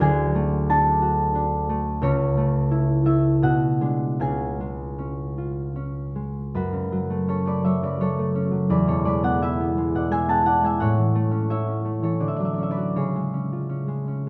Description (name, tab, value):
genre	classical, solo harp piece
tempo	75-92 BPM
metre	3/4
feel	rubato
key	F# minor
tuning	A4 = 440 Hz
part	concert harp	solo	0.0-14.3 s	C#2 to A5	-23 LUFS	equal	none
room	wet recital hall reverb, RT60 1.4 s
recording	none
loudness	-23 LUFS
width	mono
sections	0.0-6.5 A section; 6.5-14.3 B section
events	none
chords	0.0 D; 2.0 A/C#; 3.4 G#dim/B; 4.2 C#; 6.5 F#m; 8.7 E; 10.8 A; 12.2 Dmaj7; 13.0 C#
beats	| 0.02 0.69 1.35 | 2.02 2.71 3.44 | 4.22 5.00 5.77 | 6.54 7.28 8.00 | 8.70 9.42 10.12 | 10.81 11.49 12.22 | 12.95 13.69